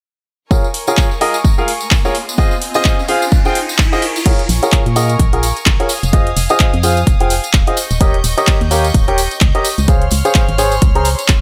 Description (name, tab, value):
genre	piano house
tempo	128 BPM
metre	4/4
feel	swing 58% on 16ths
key	unclear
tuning	A4 = 439 Hz
part	rich studio string section	sustained chords	0.5-11.4 s	F4 to G6	-27 LUFS	equal	sidechain pumping
part	bright concert grand piano	riff	0.5-11.1 s	F4 to Bb5	-19 LUFS	equal	sidechain pumping, low-pass filter, delay
part	electronic kick drum	drums	0.5-11.4 s	none	-15 LUFS	equal	none
part	tambourine	percussion	0.5-11.4 s	none	-28 LUFS	equal	none
part	riser	sound effects	1.6-4.3 s	none	-28 LUFS	equal	none
part	punchy analog drum machine	drums	0.7-11.4 s	crash cymbal, handclaps, hi-hat	-22 LUFS	equal	overdrive
part	organ-like FM bass	bass	4.5-11.4 s	Eb1 to Bb2	-19 LUFS	equal	sidechain pumping
room	little or no reverb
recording	none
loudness	-14 LUFS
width	mono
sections	0.5-4.3 A section; 4.3-11.4 B section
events	filter sweep on grand piano 0.5-4.3; riser 1.6-4.3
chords	0.5 Bbm7; 2.1 Fm7; 4.0 Bbm7; 5.9 Fm7; 7.8 Eb7; 9.9 Dbmaj7